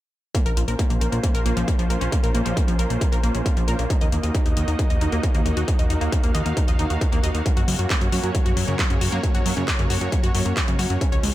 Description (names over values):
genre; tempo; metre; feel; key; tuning
uplifting trance; 135 BPM; 4/4; straight; Bb minor; A4 = 439 Hz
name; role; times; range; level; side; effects
supersaw pad; sustained chords; 0.5-11.3 s; Ab3 to F5; -30 LUFS; right 2 dB; sidechain pumping, low-pass filter
wide unison pluck; arpeggios; 0.3-11.3 s; Db3 to Eb5; -28 LUFS; left 2 dB; sidechain pumping, ping-pong delay
electronic kick drum; drums; 0.3-11.1 s; none; -21 LUFS; equal; distortion
punchy analog drum machine; drums; 0.3-11.3 s; handclaps, hi-hat; -30 LUFS; left 2 dB; none
fat analog bass; bass; 0.5-11.3 s; Bb1 to Gb2; -24 LUFS; equal; tube saturation, sidechain pumping
room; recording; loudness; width
little or no reverb; none; -19 LUFS; side -15 dB against mid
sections
0.3-11.3 A section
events
filter sweep on supersaw synth 0.3-11.3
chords
0.3 Bbmadd9; 3.9 Ebm; 7.5 Gb